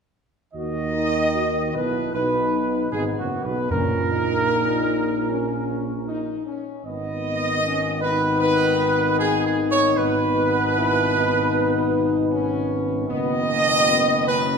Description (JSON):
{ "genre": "classical, ceremonial fanfare", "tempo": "77 BPM", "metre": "4/4", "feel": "straight", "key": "B major", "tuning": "A4 = 440 Hz", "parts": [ { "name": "warm trumpet section", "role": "melody", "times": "0.5-14.6 s", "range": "F#4 to D#5", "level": "-22 LUFS", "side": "right 1 dB", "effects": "none" }, { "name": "dark trombone section", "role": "sustained chords", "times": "0.5-14.5 s", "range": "F#2 to B3", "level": "-28 LUFS", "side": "right 2 dB", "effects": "none" }, { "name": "warm French horn section", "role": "sustained chords", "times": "0.5-14.6 s", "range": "A#3 to F#4", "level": "-26 LUFS", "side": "left 5 dB", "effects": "none" }, { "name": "mellow tuba", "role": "bass", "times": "0.5-14.6 s", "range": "F#1 to D#2", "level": "-27 LUFS", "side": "right 2 dB", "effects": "none" }, { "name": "timpani", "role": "percussion", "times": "3.7-4.8 s", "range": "F#2", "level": "-28 LUFS", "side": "left 2 dB", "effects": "none" } ], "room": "wet scoring stage reverb, RT60 1.7 s", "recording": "minimal, uncompressed stereo recording", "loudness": "-19 LUFS", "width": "side -5 dB against mid", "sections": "0.6-14.6 A section", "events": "none", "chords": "0.6 B; 3.7 A#madd11; 6.8 G#m; 13.1 B/F#", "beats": "| 0.55 1.35 2.14 2.93 | 3.71 4.49 5.29 6.07 | 6.85 7.63 8.41 9.20 | 9.97 10.75 11.54 12.31 | 13.09 13.87" }